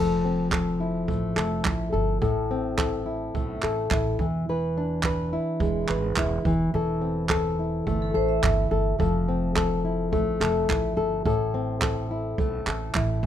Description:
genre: acoustic pop.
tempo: 106 BPM.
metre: 4/4.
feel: straight.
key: A minor.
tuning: A4 = 438 Hz.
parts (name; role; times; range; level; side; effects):
flamenco guitar; accompaniment; 0.0-13.3 s; A2 to B4; -25 LUFS; left 2 dB; none.
upright bass; bass; 0.0-13.3 s; E1 to B1; -30 LUFS; right 1 dB; none.
jazz brush drum kit; drums; 0.5-13.3 s; handclaps, kick drum; -28 LUFS; right 4 dB; none.
vibraphone with medium hard mallets; second line; 8.0-9.0 s; A4 to E5; -29 LUFS; right 11 dB; none.
room: little or no reverb.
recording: minimal, uncompressed stereo recording.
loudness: -23 LUFS.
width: side -10 dB against mid.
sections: 0.0-13.3 A section.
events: none.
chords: 0.0 Fmaj7; 2.2 Am; 4.2 E7; 6.5 Am/E; 9.0 Fmaj7; 11.3 Am.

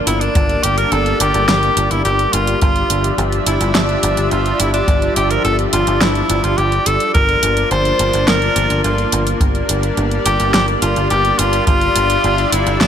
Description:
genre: synthwave.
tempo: 106 BPM.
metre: 4/4.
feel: straight.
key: G dorian.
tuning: A4 = 438 Hz.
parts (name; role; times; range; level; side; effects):
lush unison pad; sustained chords; 0.0-12.9 s; F3 to E5; -20 LUFS; left 1 dB; chorus, sidechain pumping.
clear tenor saxophone; melody; 0.1-12.9 s; D4 to C5; -17 LUFS; equal; ping-pong delay.
picked electric bass; bass; 0.1-12.9 s; G1; -19 LUFS; equal; none.
pop drum kit; drums; 0.1-12.9 s; hi-hat, snare drum; -19 LUFS; right 1 dB; overdrive.
kick drum; drums; 0.4-11.8 s; none; -17 LUFS; equal; none.
room: moderate plate reverb, RT60 1.6 s, studio ambience.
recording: bright 1980s-style digital production.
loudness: -13 LUFS.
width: side -8 dB against mid.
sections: 0.0-12.9 A section.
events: none.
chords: 0.4 Gm; 2.6 Dmadd9/G; 7.1 Bb/G; 9.4 Gm; 11.7 Dmadd9/G.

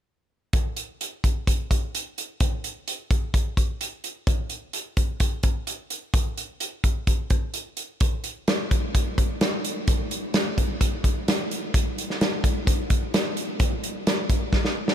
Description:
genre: rock.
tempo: 128 BPM.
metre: 4/4.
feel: straight.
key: none.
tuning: none.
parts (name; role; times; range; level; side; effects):
loose indie drum kit; drums; 0.5-14.9 s; hi-hat, kick drum, snare drum; -22 LUFS; equal; none.
room: light reverb.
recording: none.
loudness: -23 LUFS.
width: side -10 dB against mid.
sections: 0.5-14.9 A section.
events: drum fill 14.5-14.9.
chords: none.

